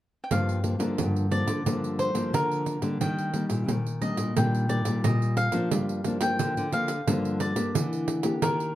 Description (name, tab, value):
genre	samba and choro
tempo	89 BPM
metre	4/4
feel	straight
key	G minor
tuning	A4 = 441 Hz
part	cavaquinho	melody	0.2-8.8 s	Bb4 to G5	-31 LUFS	left 1 dB	plate reverb
part	nylon-string guitar	accompaniment	0.3-8.8 s	G2 to G4	-29 LUFS	left 2 dB	none
part	nylon-string guitar	bass	0.3-8.8 s	G2 to G3	-29 LUFS	equal	none
part	pandeiro	percussion	0.3-8.8 s	none	-31 LUFS	right 5 dB	none
room	moderate small room reverb, RT60 0.5 s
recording	dark, warm production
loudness	-24 LUFS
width	side -14 dB against mid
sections	0.3-5.7 A section; 5.7-8.8 B section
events	none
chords	0.3 Gm7; 3.0 Ebmaj7; 5.7 Gm7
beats	| 0.31 0.99 1.66 2.34 | 3.02 3.69 4.37 5.05 | 5.72 6.40 7.08 7.75 | 8.43